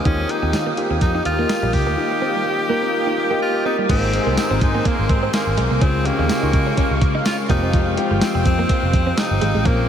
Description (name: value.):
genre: 1980s-style pop.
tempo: 125 BPM.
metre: 4/4.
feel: swing 55% on 16ths.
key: Ab major.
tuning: A4 = 440 Hz.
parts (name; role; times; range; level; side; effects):
edgy tenor saxophone; melody; 0.0-9.9 s; Bb3 to G4; -23 LUFS; equal; tape echo.
warm concert grand piano; accompaniment; 0.0-9.9 s; Ab2 to Bb4; -23 LUFS; left 3 dB; none.
warm analog pad; sustained chords; 0.0-9.9 s; Ab3 to Eb6; -28 LUFS; right 1 dB; chorus.
direct-recorded clean electric guitar; riff; 0.0-9.7 s; F3 to Eb4; -27 LUFS; right 4 dB; analog chorus.
vintage muted picked electric bass; bass; 0.1-9.9 s; F1 to Eb3; -22 LUFS; equal; none.
clean 12-bit digital drum machine; drums; 0.1-9.8 s; crash cymbal, hi-hat, kick drum, snare drum, tambourine; -22 LUFS; equal; none.
tambourine; percussion; 0.5-9.3 s; none; -41 LUFS; right 3 dB; none.
overdriven electric guitar; accompaniment; 3.9-9.9 s; F2 to Db4; -30 LUFS; equal; analog chorus.
room: wet huge ambient reverb, RT60 7.0 s.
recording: dreamy mix soaked in reverb.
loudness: -16 LUFS.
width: side -9 dB against mid.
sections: 0.0-3.9 A section; 3.9-9.9 B section.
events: none.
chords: 0.1 Ebadd9; 3.9 Abadd9; 5.8 Db; 7.5 Fmadd9.